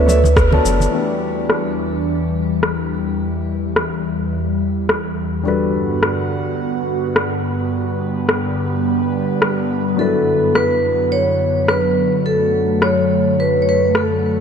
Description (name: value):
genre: sunset chillout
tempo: 106 BPM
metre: 4/4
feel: swing 57% on 16ths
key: E minor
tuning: A4 = 437 Hz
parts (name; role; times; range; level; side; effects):
- vibraphone with medium hard mallets; melody; 0.0-0.6, 10.0-14.4 s; A4 to C#5; -18 LUFS; equal; tape echo, shimmer reverb
- dark grand piano; accompaniment; 0.0-14.4 s; E3 to A5; -24 LUFS; moving between left 6 dB and right 4 dB; auto-pan, tape echo, shimmer reverb
- airy breathy pad; sustained chords; 0.0-14.4 s; E2 to F#4; -19 LUFS; equal; chorus, phaser
- warm sub bass; bass; 0.0-0.9 s; F#1 to D2; -15 LUFS; equal; none
- electronic cabasa and rim click; drums; 0.1-14.1 s; none; -21 LUFS; left 1 dB; overdrive, low-pass filter on perc, small room ambience, low-pass filter on snare
- congas; percussion; 0.1-0.9 s; none; -24 LUFS; right 3 dB; none
- electronic kick drum; drums; 0.4-0.5 s; none; -18 LUFS; equal; overdrive, small room ambience
room: moderate lush hall reverb, RT60 3.0 s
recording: dark, warm production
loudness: -15 LUFS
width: side -7 dB against mid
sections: 0.9-14.4 A section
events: band accent 0.4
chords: 0.0 D6; 0.9 Em7; 5.5 Gmaj7; 10.0 D69/F#